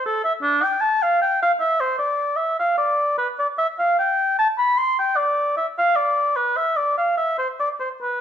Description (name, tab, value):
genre	classical, baroque-style fantasia for unaccompanied oboe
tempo	75 BPM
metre	4/4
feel	rubato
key	unclear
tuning	A4 = 437 Hz
part	mellow oboe	solo	0.0-8.2 s	D4 to C6	-18 LUFS	equal	none
room	wet stone room reverb, RT60 1.0 s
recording	heard from further back in the room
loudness	-18 LUFS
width	side -9 dB against mid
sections	0.0-8.2 A section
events	none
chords	none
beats	0.44 1.22 | 2.02 2.81 3.59 4.39 | 5.19 5.98 6.79 7.61